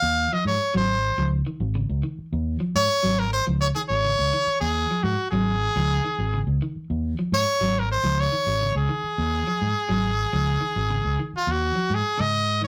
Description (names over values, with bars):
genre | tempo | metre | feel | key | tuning
afrobeat | 105 BPM | 4/4 | straight | Ab mixolydian | A4 = 445 Hz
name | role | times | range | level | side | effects
brilliant trumpet | melody | 0.0-12.7 s | F4 to F5 | -26 LUFS | equal | none
fingered electric bass | bass | 0.0-12.6 s | Ab1 to Ab2 | -28 LUFS | equal | none
electric guitar at the edge of break-up | arpeggios | 0.3-12.7 s | Db3 to Gb3 | -31 LUFS | equal | none
room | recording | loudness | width
moderate small room reverb, RT60 0.5 s | rough rehearsal-room recording, tube saturation | -24 LUFS | mono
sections
0.0-12.2 A section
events
none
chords
0.0 Absus4